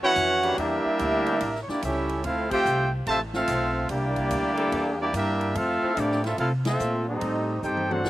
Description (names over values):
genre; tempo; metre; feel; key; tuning
jazz, big band swing; 145 BPM; 4/4; swing 65% on 8ths; unclear; A4 = 439 Hz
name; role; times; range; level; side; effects
warm trumpet section; melody; 0.0-8.1 s; Bb3 to A5; -25 LUFS; equal; none
brilliant trombone section; second line; 0.0-8.1 s; C3 to G4; -28 LUFS; right 1 dB; slapback echo
warm trombone section; sustained chords; 0.0-8.0 s; C#3 to A4; -33 LUFS; left 3 dB; none
upright bass; bass; 0.0-8.1 s; A1 to C3; -31 LUFS; equal; none
swinging big-band drum kit; drums; 0.2-8.1 s; crash cymbal, hi-hat, kick drum, ride cymbal, snare drum, toms; -39 LUFS; left 1 dB; none
room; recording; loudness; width
little or no reverb; recorded outdoors, with no room sound; -23 LUFS; side -15 dB against mid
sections
0.0-8.1 A section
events
band accent 2.4, 6.6; drum fill 7.6-8.1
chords
0.0 A69; 0.6 Em7b5; 1.4 A7; 2.2 Dm11; 3.9 C13; 5.6 Fmaj7; 7.2 Am7b5